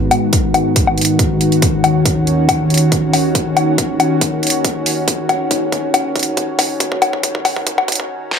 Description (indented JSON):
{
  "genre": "heavy wobble dubstep",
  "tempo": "139 BPM",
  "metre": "4/4",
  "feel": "half-time",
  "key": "unclear",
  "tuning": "A4 = 442 Hz",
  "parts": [
    { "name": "lush unison pad", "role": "sustained chords", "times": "0.0-8.4 s", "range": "D#2 to F#4", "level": "-16 LUFS", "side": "equal", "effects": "chorus, vintage 12-bit sampler grit, sidechain pumping" },
    { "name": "dubstep drum kit", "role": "drums", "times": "0.1-8.4 s", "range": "hi-hat, snare drum, woodblock", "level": "-16 LUFS", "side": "left 2 dB", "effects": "none" },
    { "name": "electronic kick drum", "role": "drums", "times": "0.3-8.1 s", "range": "none", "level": "-20 LUFS", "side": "equal", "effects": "none" }
  ],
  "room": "moderate digital room reverb, RT60 1.3 s",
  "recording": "high-pass filter",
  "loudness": "-13 LUFS",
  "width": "side -7 dB against mid",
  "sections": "0.0-8.4 A section",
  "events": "build-up 0.0-8.4; filter sweep 0.0-8.4; drum fill 1.6-8.1; break 8.1",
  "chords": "0.0 G#m; 1.6 D#m7"
}